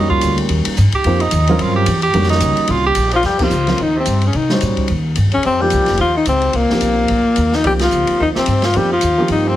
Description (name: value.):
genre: modal jazz.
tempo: 218 BPM.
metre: 4/4.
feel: swing 58% on 8ths.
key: unclear.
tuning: A4 = 441 Hz.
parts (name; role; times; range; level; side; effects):
warm tenor saxophone; second line; 0.0-9.6 s; Bb2 to G4; -21 LUFS; right 3 dB; none.
dark baby grand piano; accompaniment; 0.0-9.6 s; Eb3 to C5; -20 LUFS; right 1 dB; none.
upright bass; bass; 0.0-9.6 s; F1 to C3; -18 LUFS; equal; none.
open jazz drum kit; drums; 0.1-9.4 s; crash cymbal, hi-hat, kick drum, ride cymbal, snare drum; -24 LUFS; left 1 dB; none.
clear alto saxophone; melody; 3.2-9.6 s; Bb3 to G4; -16 LUFS; left 2 dB; none.
room: moderate studio reverb, RT60 1.0 s.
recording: heavily compressed radio sound, multiband compression.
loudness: -13 LUFS.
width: side -13 dB against mid.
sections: 0.0-3.2 A section; 3.2-9.6 B section.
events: tenor saxophone solo 0.0-3.2; band accent 3.4, 7.8.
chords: 0.0 F9sus4.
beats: 0.23 0.50 0.77 | 1.05 1.32 1.60 1.87 | 2.14 2.42 2.69 2.97 | 3.24 3.52 3.79 4.07 | 4.34 4.62 4.89 5.17 | 5.44 5.72 5.99 6.27 | 6.54 6.82 7.09 7.37 | 7.64 7.92 8.20 8.47 | 8.75 9.02 9.30.